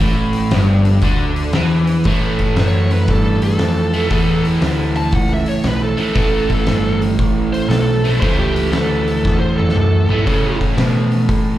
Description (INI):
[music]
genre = blues rock power trio and southern rock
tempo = 117 BPM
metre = 4/4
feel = swing 66% on 8ths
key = A mixolydian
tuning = A4 = 438 Hz
[part]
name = crunchy overdriven guitar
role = riff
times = 0.0-11.6 s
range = G2 to A3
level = -19 LUFS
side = right 1 dB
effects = spring reverb, slapback echo
[part]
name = growling picked electric bass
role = bass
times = 0.0-11.6 s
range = G1 to C#3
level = -17 LUFS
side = equal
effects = overdrive
[part]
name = oversized low-tuned drum kit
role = drums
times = 0.3-11.4 s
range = hi-hat, kick drum, snare drum, toms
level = -20 LUFS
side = equal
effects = none
[part]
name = bluesy overdriven lead guitar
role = melody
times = 2.6-10.6 s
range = G4 to A5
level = -22 LUFS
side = right 1 dB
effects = distortion, plate reverb, slapback echo
[sound]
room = light reverb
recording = live gig heard through the venue's PA, club reverb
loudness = -13 LUFS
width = side -13 dB against mid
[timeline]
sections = 0.0-2.1 A section; 2.1-11.6 B section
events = lead electric guitar solo 2.1-11.6; drum fill 9.2-10.3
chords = 0.0 A5; 2.1 A